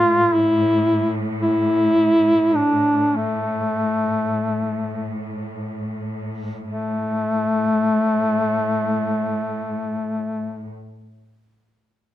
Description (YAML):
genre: caucasian folk, Caucasian lament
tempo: free time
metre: none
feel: none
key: unclear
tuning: A4 = 440 Hz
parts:
  - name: warm duduk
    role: melody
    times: 0.0-10.7 s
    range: A3 to F4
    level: -18 LUFS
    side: left 1 dB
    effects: none
  - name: warm studio string section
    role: drone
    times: 0.0-10.7 s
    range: A2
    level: -27 LUFS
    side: equal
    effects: none
room: moderate recital hall reverb, RT60 1.4 s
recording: close, detailed microphones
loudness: -18 LUFS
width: side -13 dB against mid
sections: 0.0-6.7 A section; 6.7-12.1 B section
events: slowing down 0.0-6.7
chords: none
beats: free time